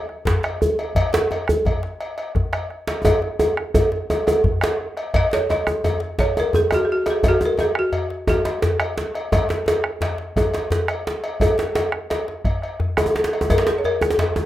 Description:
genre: west african traditional, West African drum ensemble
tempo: 115 BPM (dotted quarters)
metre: 12/8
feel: straight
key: F# major pentatonic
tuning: A4 = 442 Hz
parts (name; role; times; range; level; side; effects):
- bombo; percussion; 0.1-14.2 s; none; -23 LUFS; equal; none
- djembe; percussion; 0.3-14.5 s; none; -26 LUFS; left 2 dB; none
- djembe; percussion; 0.3-14.5 s; none; -21 LUFS; right 1 dB; none
- cowbell; percussion; 0.4-14.4 s; none; -27 LUFS; left 2 dB; none
- balafon; melody; 5.2-8.8, 13.5-14.5 s; F#4 to D#5; -22 LUFS; equal; none
room: light reverb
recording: rough home demo mix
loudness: -18 LUFS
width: side -14 dB against mid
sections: 0.0-5.1 A section; 5.1-14.5 B section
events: drum fill 3.0-5.1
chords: none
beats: 0.44 | 0.96 1.48 2.00 2.53 | 3.05 3.57 4.09 4.62 | 5.14 5.66 6.18 6.71 | 7.23 7.75 8.27 8.80 | 9.32 9.84 10.36 10.89 | 11.41 11.93 12.45 12.97 | 13.50 14.02

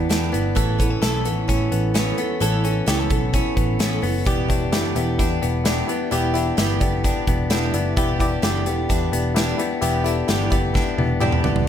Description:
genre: jangly indie pop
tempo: 130 BPM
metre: 4/4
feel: straight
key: unclear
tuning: A4 = 439 Hz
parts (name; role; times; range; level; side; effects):
- picked twelve-string acoustic guitar; accompaniment; 0.0-11.7 s; E3 to D5; -27 LUFS; right 9 dB; none
- direct-recorded clean electric guitar; arpeggios; 0.0-11.7 s; E3 to A4; -25 LUFS; left 6 dB; none
- vintage muted picked electric bass; bass; 0.0-11.6 s; E1 to A2; -24 LUFS; equal; none
- big rock drum kit; drums; 0.1-11.7 s; hi-hat, kick drum, snare drum, toms; -23 LUFS; equal; none
- reed electric piano; accompaniment; 4.3-11.7 s; E4 to G5; -27 LUFS; left 5 dB; fast tremolo
room: light reverb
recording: none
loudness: -18 LUFS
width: side -9 dB against mid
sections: 0.0-11.7 A section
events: reed electric piano fill 7.0-8.0; drum fill 10.8-11.7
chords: 0.0 Em7; 0.6 Aadd9; 4.3 Em7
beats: 0.11 | 0.57 1.03 1.49 1.95 | 2.41 2.88 3.34 3.80 | 4.26 4.72 5.19 5.65 | 6.12 6.58 7.04 7.51 | 7.97 8.44 8.90 9.36 | 9.82 10.29 10.75 11.21 | 11.68

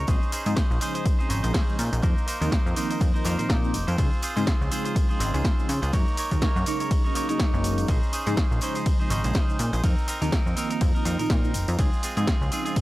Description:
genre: filtered disco house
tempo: 123 BPM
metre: 4/4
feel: swing 57% on 16ths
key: Bb minor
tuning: A4 = 439 Hz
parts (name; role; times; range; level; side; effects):
- clean electric guitar; riff; 0.0-12.8 s; Ab3 to Db5; -31 LUFS; right 2 dB; vintage 12-bit sampler grit, sidechain pumping
- plucky analog bass; bass; 0.0-12.5 s; F1 to Db3; -26 LUFS; equal; sidechain pumping
- mellow synth brass; accompaniment; 0.1-12.8 s; Db3 to C5; -31 LUFS; right 1 dB; chorus, phaser, sidechain pumping
- electronic kick drum; drums; 0.1-12.8 s; none; -24 LUFS; equal; none
- punchy analog drum machine; drums; 0.1-12.8 s; cabasa, hi-hat, ride cymbal, snare drum; -33 LUFS; equal; sidechain pumping on hats, sidechain pumping on perc, sidechain pumping on cymbals
- tambourine; percussion; 0.1-12.8 s; none; -42 LUFS; right 1 dB; none
room: little or no reverb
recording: dry, gritty hardware recording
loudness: -22 LUFS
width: side -17 dB against mid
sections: 0.0-12.8 A section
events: none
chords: 0.1 Bbm11; 2.0 F7sus4; 4.0 Dbmaj7; 5.9 Gb6; 7.9 Bbm11; 9.8 F7sus4; 11.8 Dbmaj7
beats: | 0.08 0.57 1.06 1.54 | 2.03 2.52 3.01 3.50 | 3.98 4.47 4.96 5.45 | 5.93 6.42 6.91 7.40 | 7.88 8.37 8.86 9.35 | 9.84 10.32 10.81 11.30 | 11.79 12.28 12.76

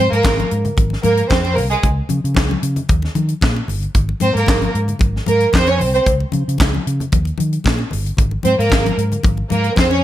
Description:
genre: disco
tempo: 113 BPM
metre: 4/4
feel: straight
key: Ab major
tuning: A4 = 439 Hz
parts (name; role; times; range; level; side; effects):
- warm studio violin section; second line; 0.0-10.0 s; Ab3 to Db5; -17 LUFS; right 2 dB; none
- fingered electric bass; bass; 0.0-10.0 s; G1 to Eb3; -19 LUFS; equal; none
- tight funk drum kit; drums; 0.1-9.9 s; handclaps, hi-hat, kick drum, snare drum; -18 LUFS; equal; gated reverb
- congas; percussion; 0.2-10.0 s; none; -25 LUFS; left 6 dB; none
room: light reverb, small room ambience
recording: none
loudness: -14 LUFS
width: side -13 dB against mid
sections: 0.0-10.0 A section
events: none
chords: 0.0 Abadd9; 1.8 N.C.; 2.9 Eb; 3.9 Abadd9; 6.1 N.C.; 7.1 Eb; 8.2 Abadd9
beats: 0.24 0.77 1.30 | 1.83 2.36 2.89 3.42 | 3.95 4.48 5.01 5.54 | 6.07 6.59 7.12 7.65 | 8.18 8.71 9.24 9.77

